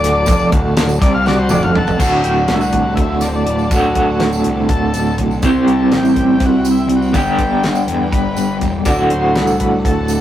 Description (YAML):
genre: psychedelic rock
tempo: 244 BPM (eighths)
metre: 7/8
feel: straight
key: D mixolydian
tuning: A4 = 439 Hz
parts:
  - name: combo organ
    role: melody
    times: 0.0-10.2 s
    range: C4 to F#5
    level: -22 LUFS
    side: left 2 dB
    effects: none
  - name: rich symphonic string section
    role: sustained chords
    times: 0.0-10.2 s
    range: A4 to A5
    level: -29 LUFS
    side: left 1 dB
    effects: none
  - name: electric guitar at the edge of break-up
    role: riff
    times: 0.0-10.2 s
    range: D2 to C5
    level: -15 LUFS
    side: right 1 dB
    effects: tremolo
  - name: fuzz picked electric bass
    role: bass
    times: 0.0-10.2 s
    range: D1 to E2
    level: -21 LUFS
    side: equal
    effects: overdrive
  - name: deep rumbling drone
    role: drone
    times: 0.0-2.0 s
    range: none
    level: barely audible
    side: none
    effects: none
  - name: damped 70s drum kit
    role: drums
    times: 0.0-10.2 s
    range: crash cymbal, hi-hat, kick drum, snare drum, toms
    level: -18 LUFS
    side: equal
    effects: none
  - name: tambourine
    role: percussion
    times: 0.3-10.2 s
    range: none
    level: -33 LUFS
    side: right 7 dB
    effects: none
room: moderate small room reverb, RT60 0.6 s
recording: rough rehearsal-room recording, warm saturation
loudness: -12 LUFS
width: side -12 dB against mid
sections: 0.0-2.0 A section; 2.0-10.2 B section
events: transistor combo organ solo 0.0-2.0; drum fill 1.3-2.0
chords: 0.0 D; 5.4 C; 7.1 G; 8.9 D